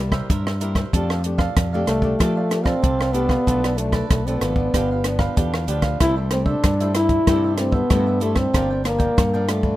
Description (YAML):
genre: samba and choro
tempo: 95 BPM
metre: 4/4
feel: straight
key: C major from 6.0 s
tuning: A4 = 441 Hz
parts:
  - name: cavaquinho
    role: accompaniment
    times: 0.0-9.8 s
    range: D4 to G5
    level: -31 LUFS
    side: right 6 dB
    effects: none
  - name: nylon-string guitar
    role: accompaniment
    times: 0.0-9.8 s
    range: G2 to G4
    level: -29 LUFS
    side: left 3 dB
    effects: none
  - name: fretless electric bass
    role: bass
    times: 0.0-9.7 s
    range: G1 to F3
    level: -23 LUFS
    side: equal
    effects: none
  - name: compact cocktail drum kit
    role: drums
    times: 0.1-9.8 s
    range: hi-hat, kick drum, rim click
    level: -22 LUFS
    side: equal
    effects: none
  - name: mellow trombone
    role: melody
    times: 1.9-9.8 s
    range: A3 to E4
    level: -21 LUFS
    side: equal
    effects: none
room: small room ambience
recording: rough home demo mix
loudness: -18 LUFS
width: side -15 dB against mid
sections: 0.0-6.0 A section; 6.0-9.8 B section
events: none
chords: 0.0 C7; 0.9 F69; 3.5 Bm7b5; 4.7 G7; 6.0 C6; 8.5 Gm7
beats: 0.30 | 0.93 1.57 2.20 2.83 | 3.47 4.10 4.74 5.37 | 6.01 6.64 7.28 7.91 | 8.55 9.18